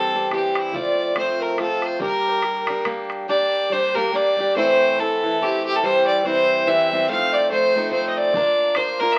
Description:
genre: celtic folk, Celtic waltz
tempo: 142 BPM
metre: 3/4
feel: swing 57% on 8ths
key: G dorian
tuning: A4 = 439 Hz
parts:
  - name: bright fiddle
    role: melody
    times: 0.0-9.2 s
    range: E4 to F5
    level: -23 LUFS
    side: equal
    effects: none
  - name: mellow baroque flute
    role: second line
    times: 0.0-9.2 s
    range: G4 to F5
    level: -28 LUFS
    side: equal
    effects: none
  - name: picked plugged-in swing-style acoustic guitar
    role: accompaniment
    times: 0.0-9.2 s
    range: A2 to Bb4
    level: -26 LUFS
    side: equal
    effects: none
  - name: bodhran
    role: percussion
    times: 0.3-3.2, 8.3-9.2 s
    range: none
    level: -32 LUFS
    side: equal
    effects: none
room: wet small room reverb, RT60 0.5 s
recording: very old 78 rpm record, vinyl crackle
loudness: -20 LUFS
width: mono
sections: 0.0-3.3 A section; 3.3-9.2 A section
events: none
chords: 0.0 C; 0.7 F; 2.0 Gm; 4.6 Am; 5.8 C; 7.1 F7; 8.3 Bb

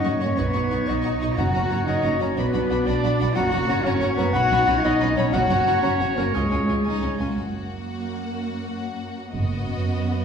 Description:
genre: cinematic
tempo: 121 BPM (dotted quarters)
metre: 6/8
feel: straight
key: F# major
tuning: A4 = 440 Hz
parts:
  - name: warm symphonic violin section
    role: melody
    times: 0.0-10.2 s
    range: D#5 to C#6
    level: -36 LUFS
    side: left 3 dB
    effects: none
  - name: bright symphonic violin section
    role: second line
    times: 0.0-10.2 s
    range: C#4 to F#4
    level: -36 LUFS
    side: left 3 dB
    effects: none
  - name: warm clarinet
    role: second line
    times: 0.0-7.2 s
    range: G#4 to F#5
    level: -25 LUFS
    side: left 3 dB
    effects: none
  - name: dark French horn section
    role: sustained chords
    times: 0.0-7.2 s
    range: G#3 to F#4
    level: -29 LUFS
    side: left 2 dB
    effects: none
  - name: clear trumpet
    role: stabs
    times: 0.0-7.2 s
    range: C#5 to D5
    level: -31 LUFS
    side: right 1 dB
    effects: none
  - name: warm symphonic cello section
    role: bass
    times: 0.0-10.2 s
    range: F#2 to F#4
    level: -27 LUFS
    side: right 2 dB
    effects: none
  - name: warm symphonic double bass section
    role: bass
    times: 0.0-9.7 s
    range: F#1 to F#2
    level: -26 LUFS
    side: right 2 dB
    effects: none
  - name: warm symphonic viola section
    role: accompaniment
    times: 0.1-10.2 s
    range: A#3 to D#4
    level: -32 LUFS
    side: right 2 dB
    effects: none
  - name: timpani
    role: percussion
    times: 1.4-1.8 s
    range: F#2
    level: -30 LUFS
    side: right 1 dB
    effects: none
room: wet scoring stage reverb, RT60 1.6 s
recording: heard from further back in the room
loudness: -20 LUFS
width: side -7 dB against mid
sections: 0.0-7.4 A section; 7.4-10.2 B section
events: none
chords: 0.4 Badd9; 1.4 F#; 2.4 Bm; 3.4 F#; 4.3 Badd9; 5.3 F#; 6.3 C#; 7.4 F#; 9.3 B/F#

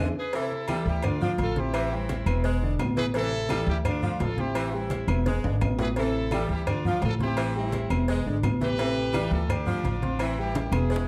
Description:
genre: latin, salsa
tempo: 170 BPM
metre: 4/4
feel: straight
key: A minor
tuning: A4 = 445 Hz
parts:
  - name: bright saxophone section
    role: second line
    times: 0.0-11.1 s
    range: E3 to G#3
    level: -37 LUFS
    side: equal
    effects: none
  - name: dark grand piano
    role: accompaniment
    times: 0.0-11.0 s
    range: B2 to C6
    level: -33 LUFS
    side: equal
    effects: none
  - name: upright bass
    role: bass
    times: 0.0-11.1 s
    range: E1 to E2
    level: -31 LUFS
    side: equal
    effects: none
  - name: clear horn section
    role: melody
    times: 0.2-11.1 s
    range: C4 to B4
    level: -34 LUFS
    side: equal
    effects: none
  - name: agogo bells and timbales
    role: percussion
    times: 0.3-10.9 s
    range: none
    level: -39 LUFS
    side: equal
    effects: none
  - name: congas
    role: percussion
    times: 0.3-11.1 s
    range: none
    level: -36 LUFS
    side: equal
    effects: none
  - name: cowbell and bongos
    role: percussion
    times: 0.3-11.1 s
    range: none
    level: -40 LUFS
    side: equal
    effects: none
  - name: claves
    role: percussion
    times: 0.7-10.9 s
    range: none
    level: -45 LUFS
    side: equal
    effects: none
room: moderate large studio reverb, RT60 0.8 s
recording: dark, warm production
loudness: -27 LUFS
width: mono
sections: 0.3-11.1 A section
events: drum fill 0.0-0.3, 4.9-6.0, 10.6-11.1; band accent 0.0-0.3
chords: 0.3 Am7; 1.0 Dm; 1.7 Am7; 2.4 E7; 3.1 Am7; 3.9 Dm; 4.6 Am7; 5.3 E7; 6.0 Am7; 6.7 Dm; 7.4 Am7; 8.1 E7; 8.8 Am7; 9.5 Dm; 10.2 Am7

